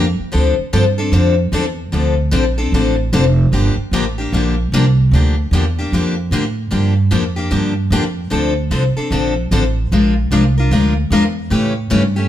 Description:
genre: acoustic string swing (jazz manouche)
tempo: 150 BPM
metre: 4/4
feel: swing 62% on 8ths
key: D minor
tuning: A4 = 440 Hz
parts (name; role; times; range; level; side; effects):
- picked steel-string acoustic guitar; accompaniment; 0.0-12.3 s; C#3 to Bb4; -17 LUFS; left 3 dB; none
- upright bass; bass; 0.0-12.3 s; F1 to A2; -15 LUFS; right 1 dB; none
room: moderate large studio reverb, RT60 1.0 s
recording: band playing live in one room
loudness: -13 LUFS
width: side -12 dB against mid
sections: 0.0-12.3 A section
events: none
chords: 0.3 Dm7; 3.5 Gm7; 8.3 Dm7; 9.9 Bb7; 11.5 A7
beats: | 0.33 0.73 1.13 1.53 | 1.93 2.32 2.72 3.12 | 3.52 3.92 4.32 4.72 | 5.12 5.52 5.92 6.32 | 6.72 7.12 7.52 7.92 | 8.31 8.71 9.11 9.51 | 9.91 10.31 10.71 11.11 | 11.51 11.91

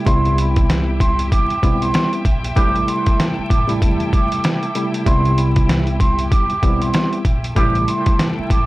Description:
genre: hip hop, boom-bap hip-hop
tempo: 96 BPM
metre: 4/4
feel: swing 60% on 16ths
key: C major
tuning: A4 = 445 Hz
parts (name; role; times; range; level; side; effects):
- tine electric piano; accompaniment; 0.0-8.6 s; C3 to E4; -22 LUFS; equal; overdrive, fast stereo tremolo, cassette tape, high-pass filter, low-pass filter
- clear studio string section; sustained chords; 0.0-8.7 s; E4 to G5; -29 LUFS; equal; high-pass filter, low-pass filter
- vibraphone with medium mallets; melody; 0.1-8.7 s; B5 to D6; -22 LUFS; right 2 dB; high-pass filter, low-pass filter, tape echo
- upright bass; bass; 0.1-8.7 s; A1 to E2; -21 LUFS; equal; none
- trip hop sampler-style drum kit; drums; 0.1-8.7 s; hi-hat, kick drum, snare drum; -18 LUFS; equal; none
- clear saxophone section; stabs; 2.6-2.8, 7.6-7.8 s; E3 to G4; -30 LUFS; left 2 dB; high-pass filter, low-pass filter, tape echo
room: little or no reverb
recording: dry, gritty hardware recording, vinyl crackle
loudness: -14 LUFS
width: side -19 dB against mid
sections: 0.0-8.7 A section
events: none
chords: 0.1 Cmaj7; 2.6 Am7; 5.1 Cmaj7; 7.6 Am7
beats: | 0.07 0.69 1.31 1.94 | 2.56 3.19 3.81 4.44 | 5.07 5.69 6.32 6.94 | 7.57 8.19

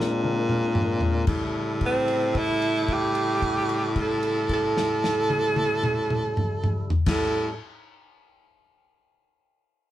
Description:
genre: slow blues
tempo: 37 BPM (dotted quarters)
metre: 12/8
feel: straight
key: A mixolydian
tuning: A4 = 436 Hz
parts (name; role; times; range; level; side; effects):
- tonewheel organ; sustained chords; 0.0-7.5 s; C#3 to Bb4; -34 LUFS; left 2 dB; slow rotary speaker
- breathy baritone saxophone; bass; 0.0-7.5 s; A2 to Bb2; -26 LUFS; left 1 dB; none
- warm soul drum kit; drums; 0.0-7.3 s; crash cymbal, kick drum, snare drum, toms; -28 LUFS; left 1 dB; none
- clear tenor saxophone; melody; 1.9-7.6 s; C4 to A4; -25 LUFS; right 2 dB; none
room: moderate studio reverb, RT60 0.6 s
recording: band playing live in one room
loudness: -22 LUFS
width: side -13 dB against mid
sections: 0.0-1.3 A section; 1.3-7.7 B section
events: drum fill 0.0-1.3; slowing down 0.0-1.3; held note 1.3-7.1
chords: 0.0 Bb9; 1.3 A7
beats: | 1.28 2.89 4.50 6.11

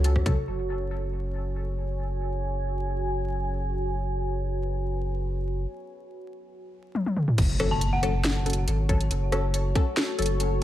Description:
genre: deep dubstep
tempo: 139 BPM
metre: 4/4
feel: half-time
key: F# minor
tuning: A4 = 440 Hz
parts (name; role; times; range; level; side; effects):
- deep dark ambient pad; sustained chords; 0.0-10.6 s; F#4 to G#5; -33 LUFS; equal; chorus, built-in reverb
- saturated sub bass; bass; 0.0-10.6 s; F#1 to C#2; -27 LUFS; equal; none
- garage drum kit; drums; 0.0-0.3, 7.0-10.5 s; crash cymbal, hi-hat, rim click, snare drum, toms; -28 LUFS; equal; overdrive, low-pass filter on hats, low-pass filter on snare, low-pass filter on toms, low-pass filter on cymbals
- electronic kick drum; drums; 0.2-0.3, 7.4-9.8 s; none; -24 LUFS; equal; overdrive
- filtered dub chord stab; stabs; 0.3, 7.6-10.6 s; F#3 to A4; -32 LUFS; left 3 dB; phaser, dub echo
- impact; sound effects; 7.4-9.1 s; none; -34 LUFS; equal; none
- dark detuned synth bell; melody; 7.7-8.5 s; F#5 to A5; -34 LUFS; left 1 dB; chorus, vintage 12-bit sampler grit, dub echo
room: light reverb, digital ambience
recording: vinyl crackle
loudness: -25 LUFS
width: side -13 dB against mid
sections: 0.5-7.4 A section; 7.4-10.6 B section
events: drum fill 7.0-7.4; drop 7.4-10.6; impact 7.4-9.1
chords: 0.5 F#5; 7.4 F#m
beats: 0.04 | 0.47 0.91 1.34 1.77 | 2.20 2.63 3.06 3.50 | 3.93 4.36 4.79 5.22 | 5.66 6.09 6.52 6.95 | 7.38 7.81 8.24 8.68 | 9.11 9.54 9.97 10.40

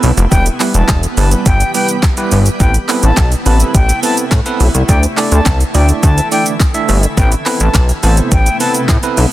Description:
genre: dance-pop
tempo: 105 BPM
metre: 4/4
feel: straight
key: A minor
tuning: A4 = 439 Hz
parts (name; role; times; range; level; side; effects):
- bell-like tine electric piano; accompaniment; 0.0-9.2 s; G3 to E5; -19 LUFS; right 3 dB; medium stereo tremolo, sidechain pumping
- shimmering ambient pad; sustained chords; 0.0-9.3 s; C3 to G4; -22 LUFS; equal; chorus, built-in reverb, sidechain pumping
- chorused synth bass; bass; 0.0-9.3 s; E1 to A2; -11 LUFS; equal; sidechain pumping
- smooth R&B drum kit; drums; 0.0-9.3 s; handclaps, hi-hat, kick drum, shaker, snare drum; -14 LUFS; equal; overdrive
- bright reedy concert flute; melody; 0.3-8.7 s; G5 to A5; -20 LUFS; left 2 dB; tape echo
room: digital ambience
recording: dense, heavily limited modern master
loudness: -10 LUFS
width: side -15 dB against mid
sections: 0.0-9.3 A section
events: none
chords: 0.3 Em; 2.6 Amadd9; 4.9 Dsus2; 7.2 Amadd9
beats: | 0.32 0.89 1.46 2.03 | 2.60 3.17 3.75 4.32 | 4.89 5.46 6.03 6.60 | 7.17 7.75 8.32 8.89

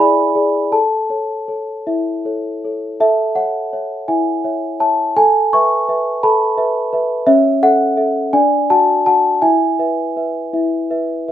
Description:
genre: classical, lullaby for celesta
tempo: 52-58 BPM (dotted quarters)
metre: 6/8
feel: rubato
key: A major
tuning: A4 = 439 Hz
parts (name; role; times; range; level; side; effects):
- celesta; solo; 0.0-11.3 s; C#4 to C#6; -14 LUFS; equal; none
room: wet studio reverb, RT60 0.6 s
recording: rough home demo mix, nothing above 10.4 kHz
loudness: -14 LUFS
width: side -11 dB against mid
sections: 0.0-3.0 A section; 3.0-11.3 A section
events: none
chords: 0.0 E7; 0.7 A; 5.2 E5/A; 7.3 A/C#; 8.3 D; 9.4 E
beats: | 0.73 1.87 | 3.00 4.07 | 5.15 6.22 | 7.26 8.33 | 9.41 10.52

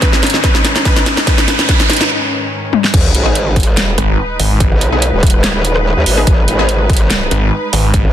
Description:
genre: heavy wobble dubstep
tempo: 144 BPM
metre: 4/4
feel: swing 53% on 16ths, half-time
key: G# minor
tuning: A4 = 440 Hz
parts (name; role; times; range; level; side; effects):
- wide unison pluck; melody; 0.0-2.1 s; D#4 to B4; -20 LUFS; equal; lush chorus, ping-pong delay
- muted studio string section; sustained chords; 0.0-8.1 s; G#2 to B4; -21 LUFS; equal; sidechain pumping
- dubstep drum kit; drums; 0.0-8.0 s; crash cymbal, hi-hat, rim click, snare drum, toms; -16 LUFS; equal; none
- electronic kick drum; drums; 0.0-8.0 s; none; -13 LUFS; equal; overdrive
- riser and sub drop; sound effects; 0.0-4.6 s; none; -19 LUFS; equal; none
- growl bass; bass; 2.9-8.1 s; D#1 to D#2; -14 LUFS; equal; chorus, overdrive
- orchestra-hit-like synth stab; stabs; 3.3-6.6 s; B3 to G#4; -20 LUFS; left 2 dB; built-in reverb, ping-pong delay
- snarling distorted saw bass; bass; 4.0-4.7, 7.3-8.0 s; G#1; -13 LUFS; equal; distortion, overdrive
room: light reverb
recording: dense, heavily limited modern master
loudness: -10 LUFS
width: side -11 dB against mid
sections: 0.0-2.9 A section; 2.9-8.1 B section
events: build-up 0.0-2.9; drum fill 0.0-2.1, 2.7; riser 0.0-2.1; break 2.1-2.9; drop 2.9-8.1; impact 2.9-4.6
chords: 0.0 G#5; 2.9 G#m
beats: 0.02 0.44 0.85 | 1.27 1.69 2.10 2.52 | 2.94 3.35 3.77 4.19 | 4.60 5.02 5.44 5.85 | 6.27 6.69 7.10 7.52 | 7.94

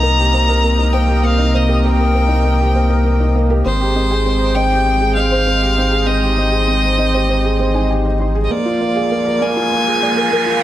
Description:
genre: piano and strings electronica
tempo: 99 BPM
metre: 4/4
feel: straight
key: unclear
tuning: A4 = 440 Hz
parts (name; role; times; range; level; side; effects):
- clear violin; melody; 0.0-10.6 s; C5 to Bb5; -18 LUFS; left 1 dB; none
- lush unison pad; sustained chords; 0.0-10.6 s; C3 to G5; -23 LUFS; equal; chorus
- soft round pluck; arpeggios; 0.0-10.4 s; Bb4 to C6; -26 LUFS; right 1 dB; chorus, digital delay
- felt-muted upright piano; riff; 0.0-10.6 s; Bb3 to Eb5; -19 LUFS; right 1 dB; none
- round analog bass; bass; 0.0-10.6 s; Ab1 to C2; -17 LUFS; equal; high-pass filter
- riser; sound effects; 9.1-10.6 s; none; -23 LUFS; right 5 dB; none
room: light reverb, studio ambience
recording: none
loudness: -13 LUFS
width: side -13 dB against mid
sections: 0.0-8.5 A section; 8.5-10.6 B section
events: filter sweep on synth arpeggio sound 0.0-8.5; build-up 8.5-10.6; filter sweep 8.5-10.6; riser 9.1-10.6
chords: 0.0 Cm7; 3.7 Abmaj7; 8.5 Bb7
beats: 0.03 0.63 | 1.24 1.84 2.45 3.06 | 3.66 4.27 4.87 5.48 | 6.09 6.69 7.30 7.91 | 8.51 9.12 9.72 10.33

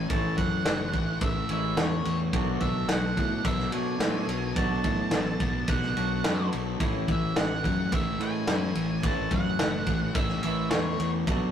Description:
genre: rock, shoegaze and dream pop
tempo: 108 BPM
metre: 4/4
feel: straight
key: A major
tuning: A4 = 439 Hz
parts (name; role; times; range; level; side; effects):
- octave-fuzz lead guitar; melody; 0.0-11.1 s; C#5 to A5; -33 LUFS; right 2 dB; distortion
- fuzz guitar; riff; 0.0-11.5 s; A2 to B3; -33 LUFS; left 3 dB; distortion
- twangy electric guitar; riff; 0.0-11.5 s; A2 to F#4; -34 LUFS; right 4 dB; none
- overdriven fingered electric bass; bass; 0.0-11.5 s; F#1 to B2; -31 LUFS; left 1 dB; none
- loose indie drum kit; drums; 0.1-11.4 s; kick drum, ride cymbal, snare drum; -29 LUFS; equal; none
room: light reverb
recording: rough rehearsal-room recording, tube saturation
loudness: -25 LUFS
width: side -9 dB against mid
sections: 0.0-11.5 A section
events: none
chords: 0.0 A; 2.3 Bm7; 6.8 A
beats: | 0.11 0.67 1.23 1.78 | 2.34 2.90 3.46 4.01 | 4.57 5.13 5.69 6.25 | 6.80 7.36 7.92 8.48 | 9.04 9.60 10.16 10.72 | 11.28

